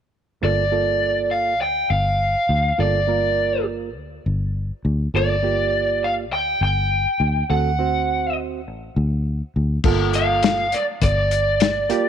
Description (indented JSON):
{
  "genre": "straight-eighth soul blues",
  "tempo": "102 BPM",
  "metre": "4/4",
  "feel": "swing 54% on 16ths",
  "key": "G minor",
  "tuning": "A4 = 440 Hz",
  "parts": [
    { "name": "lead guitar through a small cranked amp", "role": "melody", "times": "0.4-12.1 s", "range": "D5 to G5", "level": "-20 LUFS", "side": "equal", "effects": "overdrive" },
    { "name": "barky reed electric piano", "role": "accompaniment", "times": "0.4-12.1 s", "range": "Bb3 to C5", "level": "-25 LUFS", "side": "right 10 dB", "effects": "none" },
    { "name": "fingered electric bass", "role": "bass", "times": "0.4-11.9 s", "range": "G1 to D2", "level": "-23 LUFS", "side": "left 1 dB", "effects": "none" },
    { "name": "warm soul drum kit", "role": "drums", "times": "9.8-12.0 s", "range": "crash cymbal, hi-hat, kick drum, snare drum", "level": "-21 LUFS", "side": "left 6 dB", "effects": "none" }
  ],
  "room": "light reverb",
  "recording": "1960s-style stereo with parts hard left and right",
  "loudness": "-18 LUFS",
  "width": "side -8 dB against mid",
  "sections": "0.4-9.8 A section; 9.8-12.1 B section",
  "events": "none",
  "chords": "0.4 Gm7; 7.5 D7; 9.8 Gm9",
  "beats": "| 0.42 1.01 1.60 2.19 | 2.78 3.37 3.96 4.55 | 5.14 5.73 6.32 6.91 | 7.49 8.08 8.67 9.26 | 9.84 10.43 11.02 11.61"
}